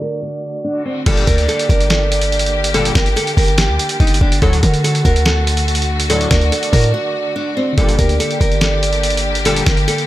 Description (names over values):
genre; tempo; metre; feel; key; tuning
hip hop, trap; 143 BPM; 4/4; half-time; G harmonic minor; A4 = 441 Hz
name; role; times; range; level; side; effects
nylon-string guitar; melody; 0.0-10.1 s; C4 to Bb4; -21 LUFS; right 1 dB; none
soft octave-layered synth lead; second line; 0.0-10.1 s; D5 to G5; -23 LUFS; right 3 dB; chorus, tremolo, digital delay
soft electric-piano-like synth keys; accompaniment; 0.0-1.1, 7.7-10.1 s; D3 to G4; -26 LUFS; left 4 dB; chorus, tremolo
rich symphonic string section; sustained chords; 0.0-10.1 s; D3 to G4; -23 LUFS; left 2 dB; none
sync-sweep polysynth; stabs; 1.1-9.6 s; A2 to G3; -24 LUFS; left 3 dB; chorus, digital delay
warm 808-style bass; bass; 1.1-9.9 s; G1 to D3; -17 LUFS; equal; none
dusty soul sampler-style drum kit; drums; 1.1-10.1 s; crash cymbal, hi-hat, kick drum, snare drum; -17 LUFS; equal; overdrive
room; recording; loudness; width
little or no reverb; low-pass filter; -13 LUFS; side -15 dB against mid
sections
0.0-1.1 A section; 1.1-10.1 B section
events
break 0.0-1.1, 6.9-7.8; filter sweep 0.0-1.1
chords
0.0 D; 1.1 Gm; 4.4 D; 7.8 Gm